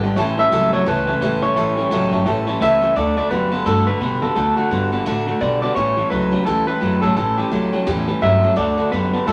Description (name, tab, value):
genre	rockabilly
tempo	171 BPM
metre	4/4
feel	swing 60% on 8ths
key	D major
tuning	A4 = 440 Hz
part	clear upright piano	accompaniment	0.0-2.9, 8.6-9.3 s	C#5 to B5	-29 LUFS	equal	none
part	picked steel-string acoustic guitar	accompaniment	0.0-9.3 s	A2 to B4	-27 LUFS	equal	none
part	electric guitar through a small old amp	riff	0.0-9.3 s	G2 to B3	-24 LUFS	equal	spring reverb
part	upright bass	bass	0.0-9.3 s	G1 to D3	-27 LUFS	equal	none
part	electric guitar through a small old amp	melody	0.4-9.3 s	F#4 to E5	-22 LUFS	equal	none
room	wet large studio reverb, RT60 1.0 s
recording	none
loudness	-18 LUFS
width	mono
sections	0.0-3.0 A section; 3.0-9.3 B section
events	none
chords	0.2 A7; 3.0 D; 5.8 A7; 8.6 D